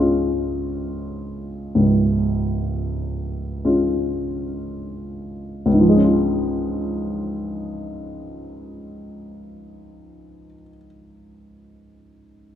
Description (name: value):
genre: classical, romantic nocturne for solo piano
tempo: 28-34 BPM (dotted quarters)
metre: 12/8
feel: rubato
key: Db major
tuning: A4 = 440 Hz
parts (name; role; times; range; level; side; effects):
- dark upright piano; solo; 0.0-12.6 s; Db1 to Db5; -20 LUFS; equal; none
room: moderate concert hall reverb, RT60 1.9 s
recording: faint mains hum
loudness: -19 LUFS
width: side -10 dB against mid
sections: 0.0-5.7 A section; 5.7-12.6 B section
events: slowing down 0.0-5.7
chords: 0.0 Db